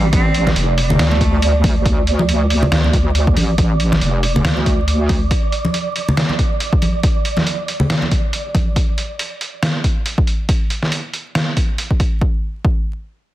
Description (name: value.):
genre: deep dubstep.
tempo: 139 BPM.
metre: 4/4.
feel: swing 57% on 16ths, half-time.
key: D minor.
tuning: A4 = 440 Hz.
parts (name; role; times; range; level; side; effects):
bright cello; melody; 0.0-1.6 s; G3 to C4; -25 LUFS; equal; dub echo.
wobble bass; bass; 0.0-5.3 s; F1 to D2; -16 LUFS; equal; chorus.
wind-like tuned noise texture; texture; 0.0-8.8 s; D5; -24 LUFS; right 4 dB; built-in reverb.
electronic kick drum; drums; 0.1-12.8 s; none; -17 LUFS; equal; small room ambience.
trip hop sampler-style drum kit; drums; 0.1-12.1 s; hi-hat, snare drum; -21 LUFS; equal; small room ambience.
congas; percussion; 0.5-8.6 s; none; -22 LUFS; equal; none.
room: light reverb, digital ambience.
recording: dense, heavily limited modern master, vinyl crackle.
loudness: -14 LUFS.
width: side -14 dB against mid.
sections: 0.0-12.2 A section; 12.2-13.3 B section.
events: none.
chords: 0.0 D5; 12.2 N.C..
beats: | 0.13 0.56 0.99 1.42 | 1.85 2.29 2.72 3.15 | 3.58 4.01 4.45 4.88 | 5.31 5.74 6.17 6.60 | 7.04 7.47 7.90 8.33 | 8.76 9.19 9.62 10.06 | 10.49 10.92 11.35 11.78 | 12.21 12.65.